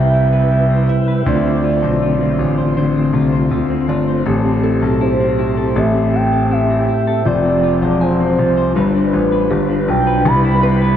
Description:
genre	dream pop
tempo	80 BPM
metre	4/4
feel	straight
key	C major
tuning	A4 = 440 Hz
part	warm velvety synth lead	melody	0.0-11.0 s	B4 to B5	-19 LUFS	right 2 dB	chorus, tape echo
part	mellow tonewheel organ	sustained chords	0.0-11.0 s	C3 to B4	-18 LUFS	right 2 dB	chorus vibrato, fast rotary speaker
part	clean electric guitar	arpeggios	0.0-11.0 s	A2 to C5	-18 LUFS	left 3 dB	lush chorus, tape echo
part	clear concert grand piano	bass	0.0-11.0 s	E1 to D2	-20 LUFS	equal	none
part	soft synth bell	texture	0.0-11.0 s	G4 to Ab5	-30 LUFS	right 1 dB	chorus, tape echo
room	moderate shimmer reverb, RT60 6.7 s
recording	none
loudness	-13 LUFS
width	side -10 dB against mid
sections	0.0-10.3 A section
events	none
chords	0.0 Cmaj7; 1.3 Dm7; 4.3 Am7; 7.3 Fm; 8.8 G7; 10.3 Cmaj7

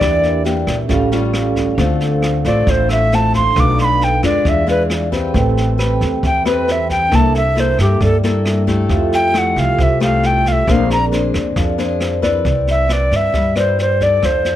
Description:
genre	bossa nova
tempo	135 BPM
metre	4/4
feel	straight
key	C major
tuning	A4 = 440 Hz
part	breathy mellow alto recorder	melody	0.0-14.6 s	G4 to D6	-16 LUFS	right 1 dB	none
part	nylon-string guitar	accompaniment	0.0-14.6 s	A2 to D5	-19 LUFS	left 5 dB	none
part	vibraphone with soft mallets	accompaniment	0.0-12.5 s	C4 to G5	-22 LUFS	right 5 dB	none
part	upright bass	bass	0.0-14.6 s	A1 to Bb2	-18 LUFS	equal	none
part	jazz brush drum kit	drums	0.0-14.5 s	kick drum, rim click, snare drum	-22 LUFS	equal	none
room	little or no reverb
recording	close, detailed microphones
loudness	-13 LUFS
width	side -12 dB against mid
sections	0.0-12.5 A section; 12.5-14.6 B section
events	recorder solo 0.0-12.5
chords	0.0 Em7b5; 0.9 A7b13; 1.8 Dm7; 3.6 Bm7b5; 4.5 E7b9; 5.3 Am9; 7.1 C13; 8.9 Fmaj9; 10.7 Bb9; 12.5 Cmaj9

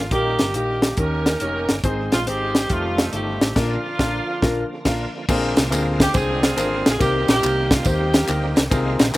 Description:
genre	uptempo gospel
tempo	139 BPM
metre	4/4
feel	swing 66% on 8ths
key	unclear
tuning	A4 = 439 Hz
part	bright saxophone section	melody	0.0-8.7 s	A3 to C5	-24 LUFS	right 1 dB	slapback echo
part	bright tonewheel organ	sustained chords	0.0-9.2 s	Db3 to C5	-31 LUFS	right 3 dB	slow rotary speaker, chorus vibrato
part	hollow-body short-scale fingered electric bass	bass	0.0-9.2 s	F1 to Eb2	-26 LUFS	equal	none
part	warm concert grand piano	accompaniment	0.1-9.2 s	Ab2 to F5	-25 LUFS	left 2 dB	slapback echo
part	tight funk drum kit	drums	0.1-9.2 s	crash cymbal, hi-hat, kick drum, ride cymbal, snare drum	-20 LUFS	equal	none
part	tambourine and handclaps	percussion	5.3-9.2 s	none	-32 LUFS	left 1 dB	none
room	little or no reverb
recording	recorded outdoors, with no room sound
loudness	-18 LUFS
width	side -18 dB against mid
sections	0.0-5.3 A section; 5.3-9.2 B section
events	band accent 3.6-5.3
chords	0.1 Eb; 1.0 Eb7; 1.8 Ab; 2.7 F9; 3.6 Bb; 5.3 Bb9; 7.0 Cm7

